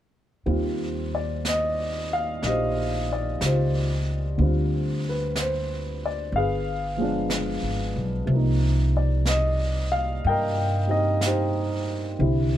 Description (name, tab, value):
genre	jazz ballad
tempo	61 BPM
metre	4/4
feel	swing 66% on 8ths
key	Eb major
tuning	A4 = 440 Hz
part	dark upright piano	accompaniment	0.5-12.6 s	C3 to G5	-26 LUFS	equal	none
part	upright bass	bass	0.5-12.6 s	G1 to G2	-25 LUFS	equal	none
part	vintage brush drum kit	drums	0.5-12.6 s	brushed snare drum, hi-hat, snare drum	-34 LUFS	right 2 dB	none
room	light reverb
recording	none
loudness	-22 LUFS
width	side -12 dB against mid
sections	0.5-12.6 A section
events	none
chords	0.5 Eb69; 4.4 Dm7; 6.3 G7b9; 8.3 Cm7